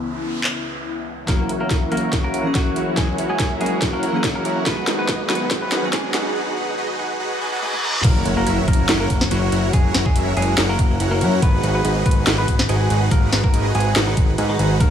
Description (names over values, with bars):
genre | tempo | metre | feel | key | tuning
future bass | 142 BPM | 4/4 | half-time | unclear | A4 = 440 Hz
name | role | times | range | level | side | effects
glassy digital keys | accompaniment | 0.0-8.1 s | D#3 to G#4 | -27 LUFS | right 1 dB | chorus, sidechain pumping
airy breathy pad | sustained chords | 0.0-6.3 s | C#2 to C#6 | -31 LUFS | left 3 dB | chorus, phaser, sidechain pumping
noise sweep, riser, reverse cymbal and impact | sound effects | 0.0-9.7 s | none | -29 LUFS | equal | none
trap drum kit | drums | 0.4-14.9 s | crash cymbal, handclaps, hi-hat, snare drum, toms | -23 LUFS | equal | none
clean electric guitar | melody | 1.3-14.9 s | D#3 to B4 | -26 LUFS | right 1 dB | sidechain pumping, tape echo
supersaw chords | riff | 1.3-14.9 s | D#4 to A#5 | -24 LUFS | right 1 dB | sidechain pumping, low-pass filter
fat analog bass | bass | 1.3-14.9 s | F#1 to G#2 | -22 LUFS | equal | sidechain pumping, high-pass filter
electronic kick drum | drums | 1.3-14.9 s | none | -19 LUFS | left 1 dB | none
room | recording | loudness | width
light reverb, digital ambience | high-pass filter, studio ambience | -17 LUFS | side -9 dB against mid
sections
0.0-1.3 A section; 1.3-8.0 B section; 8.0-14.9 C section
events
noise sweep 0.0-1.3; build-up 1.3-8.0; drum fill 1.3-6.4, 7.6-8.0; filter sweep on supersaw synth 1.3-8.0; filter sweep 1.3-8.0; break 6.4-8.0; reverse cymbal 7.4-8.0; drop 8.0-14.9; impact 8.0-9.7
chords
0.0 C#m7; 1.3 F#7; 4.7 G#m7; 8.0 F#7; 11.4 G#m7